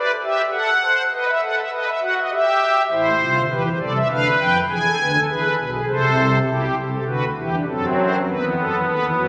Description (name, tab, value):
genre	classical, baroque-style 3-part fugue for pipe organ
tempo	101 BPM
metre	3/4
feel	straight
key	unclear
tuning	A4 = 440 Hz
part	pipe organ, strings celeste	solo	0.0-9.3 s	A1 to G#5	-20 LUFS	equal	none
room	wet church reverb, RT60 2.8 s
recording	recorded on a phone in the room, club reverb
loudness	-20 LUFS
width	mono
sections	0.0-9.3 A section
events	none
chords	0.0 Em; 0.5 F#dim/A; 1.1 B7; 2.3 Em/G; 2.9 Am; 4.1 Bdim/D; 4.7 E7; 5.9 Am/C; 6.5 Em/B; 7.7 F#dim; 8.3 B7/D#